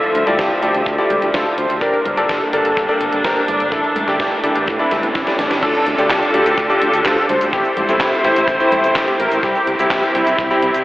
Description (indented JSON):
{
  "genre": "italo disco",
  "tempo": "126 BPM",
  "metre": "4/4",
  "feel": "straight",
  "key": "D minor",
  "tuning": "A4 = 440 Hz",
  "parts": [
    { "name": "wide unison lead", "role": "melody", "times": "0.0-10.8 s", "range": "D4 to D5", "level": "-19 LUFS", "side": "equal", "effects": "wide subtle chorus, analog delay" },
    { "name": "clear studio string section", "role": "sustained chords", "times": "0.0-10.8 s", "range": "D3 to E5", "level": "-19 LUFS", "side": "equal", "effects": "none" },
    { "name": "clear electric grand piano", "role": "stabs", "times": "0.0-10.8 s", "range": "G3 to D5", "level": "-20 LUFS", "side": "equal", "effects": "lush chorus" },
    { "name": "gated 80s digital drum machine", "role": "drums", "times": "0.0-10.8 s", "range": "cabasa, congas, crash cymbal, handclaps, hi-hat, snare drum", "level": "-24 LUFS", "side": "equal", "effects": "gated reverb, gated reverb snare, overdrive" },
    { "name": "modern bright fingered electric bass", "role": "bass", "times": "0.2-10.8 s", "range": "F1 to A2", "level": "-28 LUFS", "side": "equal", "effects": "none" },
    { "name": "kick drum", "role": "drums", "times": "0.4-10.5 s", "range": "none", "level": "-26 LUFS", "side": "equal", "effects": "none" },
    { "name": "riser", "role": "sound effects", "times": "3.9-5.6 s", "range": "none", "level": "-30 LUFS", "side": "equal", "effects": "none" }
  ],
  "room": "wet huge ambient reverb, RT60 7.3 s",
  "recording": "dreamy mix soaked in reverb, telephone sound",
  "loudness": "-14 LUFS",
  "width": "side -16 dB against mid",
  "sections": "0.0-5.6 A section; 5.6-10.8 B section",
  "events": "drum fill 4.9-5.6; band accent 5.5",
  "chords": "0.0 Dmadd9; 1.8 Gm; 3.7 Asus4; 5.6 Dm; 7.5 Am7; 9.4 C"
}